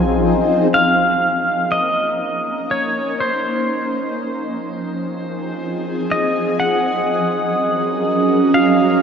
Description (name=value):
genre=ambient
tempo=61 BPM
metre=3/4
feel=straight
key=Bb minor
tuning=A4 = 440 Hz
part: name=pedal steel guitar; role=melody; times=0.0-9.0 s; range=C5 to Ab5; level=-20 LUFS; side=equal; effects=diffuse ambient delay
part: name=shimmering ambient pad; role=sustained chords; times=0.0-9.0 s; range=F3 to Bb4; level=-18 LUFS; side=equal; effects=chorus, built-in reverb, phaser
part: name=deep rumbling drone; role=bass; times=0.0-0.7 s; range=Bb1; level=-27 LUFS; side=left 1 dB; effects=built-in reverb
part: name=glass harmonica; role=texture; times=0.0-0.8, 6.6-9.0 s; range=C5 to Eb6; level=-23 LUFS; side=equal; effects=none
room=wet cathedral reverb, RT60 5.4 s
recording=in a vast, echoing space, cassette tape, nothing above 8.0 kHz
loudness=-16 LUFS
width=side -7 dB against mid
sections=0.7-9.0 A section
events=fade-in on ambient pad 0.7-9.0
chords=0.0 Fm7/Bb; 0.7 Bbm7; 3.7 Fm7; 6.6 Gbadd9